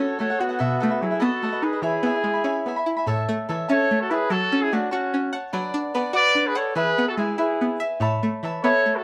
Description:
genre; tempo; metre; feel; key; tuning
mexican folk, mariachi; 97 BPM (dotted quarters); 6/8; straight; E major, A major from 3.1 s; A4 = 440 Hz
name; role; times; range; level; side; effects
mellow trumpet; melody; 0.0-9.0 s; F#4 to D5; -26 LUFS; equal; plate reverb
warm trumpet; second line; 0.0-9.0 s; B3 to B4; -32 LUFS; equal; none
cavaquinho; accompaniment; 0.0-9.0 s; D4 to B5; -30 LUFS; equal; none
string-like resonator pluck; arpeggios; 0.0-9.0 s; A2 to F#5; -28 LUFS; equal; chorus, phaser
room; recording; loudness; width
moderate small room ambience, RT60 0.5 s; none; -23 LUFS; mono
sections
0.0-3.1 A section; 3.1-9.0 B section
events
none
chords
0.0 F#m; 0.6 B7sus4; 1.2 B7; 1.8 E6; 3.1 A; 4.3 F#m; 5.5 Bm/F#; 6.8 E; 8.0 Aadd9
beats
| 0.60 1.21 | 1.82 2.44 | 3.07 3.69 | 4.30 4.92 | 5.52 6.13 | 6.75 7.38 | 8.01 8.63

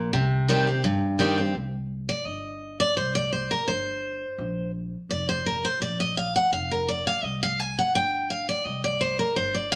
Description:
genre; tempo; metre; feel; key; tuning
bluegrass; 169 BPM; 4/4; straight; C minor; A4 = 440 Hz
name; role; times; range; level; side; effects
picked steel-string acoustic guitar; accompaniment; 0.0-9.8 s; G2 to Ab5; -26 LUFS; equal; none
upright bass; bass; 0.0-9.8 s; F1 to G2; -36 LUFS; equal; none
room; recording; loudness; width
wet studio reverb, RT60 0.8 s; lossy compression artefacts; -26 LUFS; mono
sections
0.0-1.6 A section; 1.6-9.8 B section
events
steel-string acoustic guitar solo 1.6-9.8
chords
0.1 Cm; 4.4 Bb5; 7.2 C5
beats
| 0.13 0.49 0.84 1.20 | 1.55 1.91 2.26 2.62 | 2.97 3.33 3.68 4.04 | 4.39 4.75 5.10 5.46 | 5.81 6.17 6.52 6.88 | 7.23 7.59 7.94 8.30 | 8.65 9.01 9.37 9.72

